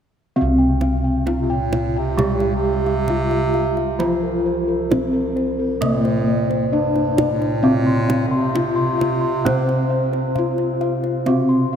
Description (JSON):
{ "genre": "Javanese gamelan", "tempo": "66 BPM", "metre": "4/4", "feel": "straight", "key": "C slendro", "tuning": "A4 = 440 Hz", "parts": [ { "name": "gamelan-type bronze metallophone", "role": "melody", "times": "0.4-11.8 s", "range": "Bb3-40c to C5", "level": "-21 LUFS", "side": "left 2 dB", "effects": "none" }, { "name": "gamelan-type bronze metallophone", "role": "accompaniment", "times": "0.4-11.8 s", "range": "C3 to C4", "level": "-26 LUFS", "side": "right 3 dB", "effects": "none" }, { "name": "gamelan-type bossed gongs", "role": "arpeggios", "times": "0.4-11.8 s", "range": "Bb4-40c to C6", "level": "-26 LUFS", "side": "left 1 dB", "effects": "none" }, { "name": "gamelan-type bossed gongs", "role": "bass", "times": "0.4-11.8 s", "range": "C2 to F4-20c", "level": "-24 LUFS", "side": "equal", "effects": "none" }, { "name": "kendang", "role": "percussion", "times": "0.8-11.5 s", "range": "none", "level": "-27 LUFS", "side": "right 4 dB", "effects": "none" }, { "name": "clear bass clarinet", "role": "second line", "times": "1.4-10.9 s", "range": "G2 to D3+41c", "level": "-25 LUFS", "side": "right 4 dB", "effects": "none" } ], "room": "wet cathedral reverb, RT60 5.9 s", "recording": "in a vast, echoing space", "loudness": "-17 LUFS", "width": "side -8 dB against mid", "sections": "0.4-11.8 A section", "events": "none", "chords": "none" }